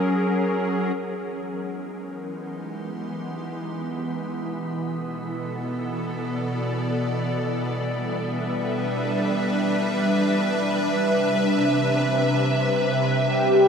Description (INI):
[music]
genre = ambient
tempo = free time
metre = none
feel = none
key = unclear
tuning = A4 = 440 Hz
[part]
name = evolving wavetable pad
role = sustained chords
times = 0.0-13.7 s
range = B2 to B#5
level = -23 LUFS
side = equal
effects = ensemble chorus, built-in reverb
[part]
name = organ-like drone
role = drone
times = 1.6-13.7 s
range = E3 to B3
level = -32 LUFS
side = right 1 dB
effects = ensemble chorus, built-in reverb
[part]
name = breathy flute-like synth lead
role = melody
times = 13.3-13.7 s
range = G4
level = -16 LUFS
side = left 1 dB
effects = analog chorus
[sound]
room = wet huge ambient reverb, RT60 7.8 s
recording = none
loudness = -22 LUFS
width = side -6 dB against mid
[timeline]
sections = 1.0-13.7 A section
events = fade-in on ambient pad 1.0-13.7; fade-out on synth drone 1.0-13.7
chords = 0.0 F#add9; 1.0 G#maj7; 4.2 Bm7; 7.5 G6; 10.8 Cmaj7